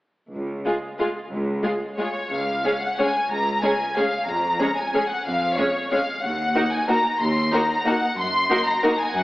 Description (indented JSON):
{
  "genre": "classical, orchestral ballroom waltz",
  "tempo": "184 BPM",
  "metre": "3/4",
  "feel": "uneven beats, rubato",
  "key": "Db major",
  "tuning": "A4 = 440 Hz",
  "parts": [
    { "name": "clear symphonic cello section", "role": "bass", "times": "0.3-9.2 s", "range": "Db2 to Gb2", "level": "-29 LUFS", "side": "equal", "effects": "none" },
    { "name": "clear symphonic violin section", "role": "melody", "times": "0.7-9.2 s", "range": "Ab4 to C6", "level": "-23 LUFS", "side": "left 1 dB", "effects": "none" },
    { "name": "rich symphonic violin section", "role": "second line", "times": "0.7-8.9 s", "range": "F4 to Db5", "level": "-27 LUFS", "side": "left 1 dB", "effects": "none" },
    { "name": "rich studio viola section", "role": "accompaniment", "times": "0.7-8.9 s", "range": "Ab3 to Eb4", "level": "-26 LUFS", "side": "equal", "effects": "none" }
  ],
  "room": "wet scoring stage reverb, RT60 1.4 s",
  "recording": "AM radio sound",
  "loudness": "-20 LUFS",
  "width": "side -17 dB against mid",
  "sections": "0.3-2.3 A section; 2.3-9.2 B section",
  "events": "none",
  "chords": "0.3 Db5; 2.3 Db; 4.3 Db/F; 6.2 Ebm; 8.2 Ebm/Gb"
}